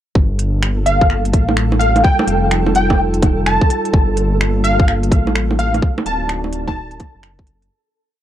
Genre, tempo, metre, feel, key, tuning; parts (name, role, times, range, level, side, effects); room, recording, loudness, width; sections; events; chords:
future garage; 127 BPM; 4/4; swing 64% on 16ths; G minor; A4 = 440 Hz
dark analog pad; sustained chords; 0.1-7.7 s; G3 to D5; -23 LUFS; equal; chorus, vintage 12-bit sampler grit, sidechain pumping
flickering grainy texture; texture; 0.5-7.7 s; A4; -27 LUFS; right 3 dB; built-in reverb
dark detuned saw bass; bass; 0.2-7.7 s; D1 to A1; -18 LUFS; equal; transformer saturation, sidechain pumping
electronic kick drum; drums; 0.2-7.5 s; -14 LUFS; equal; vintage 12-bit sampler grit
organic electronic drum kit; drums; 0.4-7.7 s; bongos, finger snaps, hi-hat; -21 LUFS; right 3 dB; vintage 12-bit sampler grit
plucky unison lead; melody; 0.9-7.3 s; F5 to A5; -19 LUFS; equal; ensemble chorus, analog delay
little or no reverb; dry, gritty hardware recording; -13 LUFS; side -11 dB against mid
0.2-7.7 groove
fade-out 5.2-7.7
0.2 Gm9; 2.0 F9; 3.9 Gm9; 5.8 D7b9